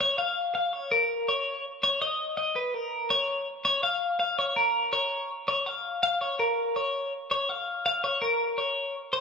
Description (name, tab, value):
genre	rock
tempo	164 BPM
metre	5/4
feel	straight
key	unclear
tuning	A4 = 441 Hz
part	twelve-string electric guitar	solo	0.0-9.2 s	Bb4 to F5	-25 LUFS	left 1 dB	spring reverb
room	moderate large studio reverb, RT60 1.1 s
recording	band playing live in one room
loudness	-25 LUFS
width	side -5 dB against mid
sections	0.0-9.2 A section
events	none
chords	none